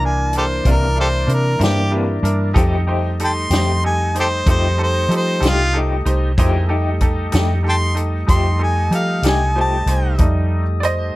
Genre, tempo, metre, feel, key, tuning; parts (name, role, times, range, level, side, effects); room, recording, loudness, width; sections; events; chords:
slow blues; 63 BPM (dotted quarters); 12/8; straight; F mixolydian; A4 = 440 Hz
warm harmonica; melody; 0.0-10.2 s; F4 to C6; -20 LUFS; equal
bright upright piano; accompaniment; 0.0-11.2 s; G3 to Eb5; -25 LUFS; right 2 dB
tonewheel organ; sustained chords; 0.0-11.2 s; E3 to Ab4; -27 LUFS; equal; slow rotary speaker
vintage muted fingered electric bass; bass; 0.0-11.1 s; C2 to F3; -18 LUFS; equal
vintage drum kit; drums; 0.3-11.0 s; hi-hat, kick drum, snare drum; -19 LUFS; equal
electric guitar through a small old amp; accompaniment; 0.7-9.8 s; C3 to G4; -24 LUFS; left 3 dB; tremolo
little or no reverb; -15 LUFS; side -18 dB against mid
0.0-10.2 A section
0.0 C9; 2.6 F9